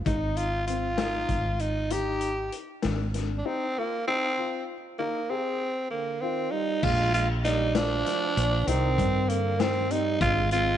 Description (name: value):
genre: progressive instrumental, band music in an uneven meter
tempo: 195 BPM (eighths)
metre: 11/8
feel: straight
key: Ab lydian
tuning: A4 = 437 Hz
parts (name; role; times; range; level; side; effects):
- woody fretless electric bass; bass; 0.0-10.8 s; Ab1 to G2; -28 LUFS; right 1 dB; none
- growling tenor saxophone; melody; 0.1-10.8 s; Bb3 to G4; -27 LUFS; right 1 dB; none
- dark baby grand piano; arpeggios; 0.1-10.8 s; C4 to D5; -35 LUFS; left 10 dB; none
- raw garage drum kit; drums; 0.1-10.7 s; crash cymbal, hi-hat, kick drum, snare drum; -32 LUFS; left 4 dB; none
- breathy trombone; second line; 5.9-10.8 s; D3 to Ab3; -33 LUFS; right 12 dB; none
room: light reverb, small room ambience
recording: 1960s-style stereo with parts hard left and right, nothing above 10.3 kHz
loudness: -24 LUFS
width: side -10 dB against mid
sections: 0.0-6.8 A section; 6.8-10.8 B section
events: none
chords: 0.1 Ab; 6.8 Bb; 8.7 Cm; 10.2 Ab